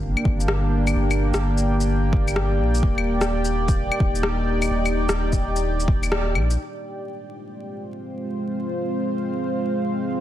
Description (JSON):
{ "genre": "future garage", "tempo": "128 BPM", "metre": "4/4", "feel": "swing 64% on 16ths", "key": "F dorian", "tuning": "A4 = 440 Hz", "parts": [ { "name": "dark analog pad", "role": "sustained chords", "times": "0.0-10.2 s", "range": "Ab3 to G5", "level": "-24 LUFS", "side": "equal", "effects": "chorus, sidechain pumping" }, { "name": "warm sub bass", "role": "bass", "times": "0.0-6.6 s", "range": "Eb1 to Bb1", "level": "-23 LUFS", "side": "equal", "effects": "sidechain pumping" }, { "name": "electronic claves, shaker and rim click", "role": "drums", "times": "0.2-6.6 s", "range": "none", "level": "-27 LUFS", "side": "left 2 dB", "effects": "overdrive" }, { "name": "electronic kick drum", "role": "drums", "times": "0.3-6.0 s", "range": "none", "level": "-22 LUFS", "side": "equal", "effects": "overdrive" } ], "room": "light reverb, digital ambience", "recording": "dense, heavily limited modern master, vinyl crackle", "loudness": "-20 LUFS", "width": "side -12 dB against mid", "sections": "0.0-6.6 A section; 6.6-10.2 B section", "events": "band accent 6.1", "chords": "0.0 Gm; 2.8 Ebmaj7; 6.6 Fm", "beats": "0.02 0.49 | 0.95 1.42 1.89 2.36 | 2.83 3.30 3.77 4.24 | 4.70 5.17 5.64 6.11 | 6.58 7.05 7.52 7.99 | 8.45 8.92 9.39 9.86" }